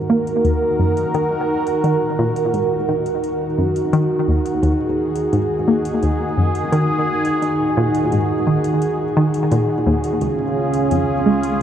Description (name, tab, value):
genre	ambient, sequencer-driven space music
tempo	86 BPM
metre	4/4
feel	straight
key	Eb minor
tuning	A4 = 440 Hz
part	sweeping resonant pad	sustained chords	0.0-11.6 s	Db3 to Bb4	-18 LUFS	right 1 dB	lush chorus
part	fat analog bass	bass	0.0-11.6 s	Eb2	-40 LUFS	left 1 dB	none
part	analog pluck	riff	0.1-11.5 s	Db2 to Bb3	-20 LUFS	equal	chorus, tape echo
part	soft vintage rhythm box	percussion	0.3-11.6 s	hi-hat, toms	-38 LUFS	left 3 dB	overdrive, tape echo
room	wet cathedral reverb, RT60 5.9 s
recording	in a vast, echoing space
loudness	-16 LUFS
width	side -9 dB against mid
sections	0.0-11.6 A section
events	fade-in on drum 0.0-11.6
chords	0.0 Ebm; 10.2 Db